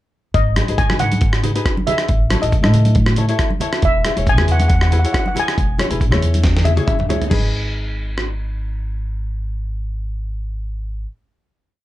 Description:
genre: calypso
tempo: 138 BPM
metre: 4/4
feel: swing 53% on 16ths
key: G# phrygian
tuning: A4 = 440 Hz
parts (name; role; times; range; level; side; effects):
- steel pan; melody; 0.3-5.8 s; D#5 to G#5; -21 LUFS; equal; plate reverb
- upright bass; bass; 0.3-11.0 s; E1 to A2; -18 LUFS; equal; none
- dusty soul sampler-style drum kit; drums; 0.3-8.3 s; crash cymbal, hi-hat, kick drum, rim click, snare drum, toms; -19 LUFS; equal; none
- ukulele; accompaniment; 0.6-11.0 s; D#4 to E5; -24 LUFS; left 3 dB; none
- congas; percussion; 0.6-7.5 s; none; -25 LUFS; right 2 dB; none
room: light reverb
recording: dark, warm production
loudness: -15 LUFS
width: side -15 dB against mid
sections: 0.3-7.3 verse; 7.3-10.8 final chord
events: drum fill 6.4-7.3; ukulele fill 6.7-7.3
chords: 0.3 G#m; 2.1 A; 3.8 E; 7.3 G#m

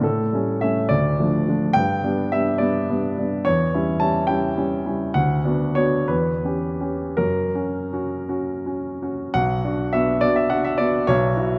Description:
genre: classical, romantic character piece for solo piano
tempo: 53-73 BPM (dotted quarters)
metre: 6/8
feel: rubato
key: B minor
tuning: A4 = 440 Hz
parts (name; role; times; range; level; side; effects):
- warm grand piano; solo; 0.0-11.6 s; B1 to A5; -22 LUFS; equal; none
room: moderate concert hall reverb, RT60 1.9 s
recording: none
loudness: -22 LUFS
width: mono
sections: 0.0-9.4 A section; 9.4-11.6 B section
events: none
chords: 0.0 A7; 0.9 Dm; 1.8 G; 3.5 C#dim/E; 5.2 Bm/D; 6.1 C#m7b5/E; 7.2 F#; 9.4 Bm

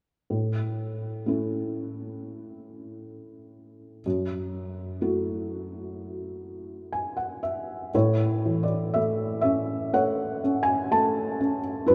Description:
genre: classical, lyrical solo piano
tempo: 62 BPM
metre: 4/4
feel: uneven beats, rubato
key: A major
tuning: A4 = 440 Hz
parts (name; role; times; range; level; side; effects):
- felt-muted upright piano; solo; 0.3-11.9 s; F#2 to A5; -28 LUFS; equal; none
room: wet cathedral reverb, RT60 6.0 s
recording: recorded in a church or concert hall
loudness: -27 LUFS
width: mono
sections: 0.3-7.9 A section; 7.9-11.9 B section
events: felt piano fill 6.4-7.9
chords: 0.3 A; 4.1 F#m7; 7.9 A

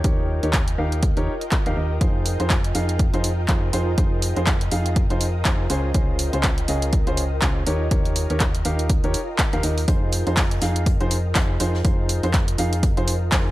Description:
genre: piano house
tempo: 122 BPM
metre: 4/4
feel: swing 58% on 16ths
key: F minor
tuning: A4 = 440 Hz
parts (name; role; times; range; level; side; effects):
- clear upright piano; riff; 0.0-13.5 s; Db4 to F5; -27 LUFS; equal; sidechain pumping, low-pass filter
- solid FM bass; bass; 0.0-13.5 s; Db2 to F2; -24 LUFS; equal; sidechain pumping
- electronic kick drum; drums; 0.0-13.4 s; none; -22 LUFS; equal; none
- house drum kit; drums; 0.0-13.4 s; handclaps, hi-hat; -26 LUFS; equal; overdrive
- ethereal airy pad; texture; 0.0-13.5 s; F4 to G5; -32 LUFS; right 1 dB; ensemble chorus, built-in reverb, sidechain pumping
- jazz brush drum kit; drums; 9.9-13.5 s; hi-hat, snare drum; -40 LUFS; left 2 dB; none
room: studio reverb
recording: dry, gritty hardware recording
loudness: -19 LUFS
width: side -16 dB against mid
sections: 0.0-13.5 A section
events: none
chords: 0.0 Eb7; 2.0 Fm7; 5.7 Dbmaj7; 7.7 Eb7; 9.9 Fm7

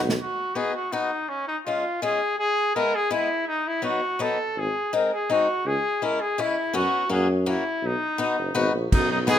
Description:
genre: alpine folk, alpine dance band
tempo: 166 BPM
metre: 3/4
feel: straight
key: B major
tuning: A4 = 441 Hz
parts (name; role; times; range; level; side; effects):
- warm tuba; bass; 0.0-0.2, 4.6-9.4 s; F#1 to F#2; -26 LUFS; equal; none
- unplugged drum kit; drums; 0.1-0.2, 8.9-9.4 s; crash cymbal, kick drum, ride cymbal, snare drum; -23 LUFS; equal; none
- bright trumpet; melody; 0.2-9.4 s; C#4 to A#4; -25 LUFS; equal; none
- picked swing-style acoustic guitar; accompaniment; 0.6-9.4 s; F#3 to F#4; -26 LUFS; left 4 dB; none
- mellow euphonium; second line; 8.9-9.4 s; F#2 to B2; -33 LUFS; right 5 dB; none
room: light reverb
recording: minimal, uncompressed stereo recording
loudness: -22 LUFS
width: side -10 dB against mid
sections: 0.2-8.9 A section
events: drum fill 0.0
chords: 0.2 B; 1.3 C#; 2.4 E; 3.5 B7; 4.6 G#7; 5.7 C#m; 6.7 F#sus4; 7.1 F#7; 7.8 B

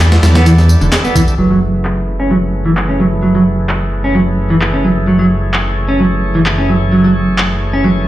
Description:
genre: breakbeat, breaks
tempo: 130 BPM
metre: 4/4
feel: straight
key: F# minor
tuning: A4 = 439 Hz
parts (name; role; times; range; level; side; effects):
- bright tonewheel organ; sustained chords; 0.0-8.1 s; D3 to C#5; -20 LUFS; equal; overdrive, slow rotary speaker, sidechain pumping, low-pass filter
- detuned saw bass; bass; 0.0-8.1 s; E1 to E2; -14 LUFS; equal; tube saturation
- breakbeat sampler-style drum kit; drums; 0.0-1.3 s; hi-hat, kick drum, snare drum; -15 LUFS; equal; none
- electronic handclaps and tambourine; drums; 0.0-7.5 s; none; -18 LUFS; equal; overdrive, low-pass filter on perc, low-pass filter on snare
- clean electric guitar; riff; 0.3-7.9 s; D3 to C#4; -13 LUFS; right 1 dB; tube saturation, vintage 12-bit sampler grit, low-pass filter, dub echo
room: moderate studio reverb, RT60 0.6 s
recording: played on a big sound system in a bare room, large studio reverb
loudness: -10 LUFS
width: side -14 dB against mid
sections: 0.0-1.4 A section; 1.4-8.1 B section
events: filter sweep on drum 1.4-8.1; filter sweep on clean electric guitar 1.4-8.1; filter sweep on tonewheel organ 1.4-8.1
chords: 0.0 Em11; 1.4 F#m11

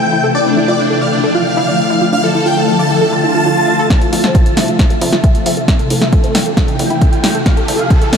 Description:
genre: uplifting trance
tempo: 135 BPM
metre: 4/4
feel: straight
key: D minor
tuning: A4 = 440 Hz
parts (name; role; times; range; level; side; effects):
- big supersaw lead; melody; 0.0-8.2 s; D4 to A5; -16 LUFS; equal; lush chorus, sidechain pumping, low-pass filter, ping-pong delay
- analog pluck; arpeggios; 0.1-8.2 s; C4 to F5; -20 LUFS; right 2 dB; chorus, sidechain pumping, ping-pong delay
- swell and riser; sound effects; 3.2-8.2 s; none; -24 LUFS; right 1 dB; none
- electronic kick drum; drums; 3.9-8.0 s; none; -12 LUFS; equal; none
- punchy analog drum machine; drums; 3.9-8.2 s; hi-hat, snare drum; -17 LUFS; equal; none
- plucky analog bass; bass; 4.1-8.2 s; G1 to F2; -22 LUFS; equal; sidechain pumping, high-pass filter
room: wet huge ambient reverb, RT60 8.9 s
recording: dreamy mix soaked in reverb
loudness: -10 LUFS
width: side -6 dB against mid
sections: 0.0-3.9 A section; 3.9-8.2 B section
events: filter sweep on synth pluck 0.0-3.9; swell 3.2-3.9; build-up 3.9-8.2; drum fill 3.9-8.2; filter sweep on supersaw synth 3.9-8.2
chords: 0.3 Dmadd9; 3.9 F; 5.7 Am; 7.5 Dmadd9

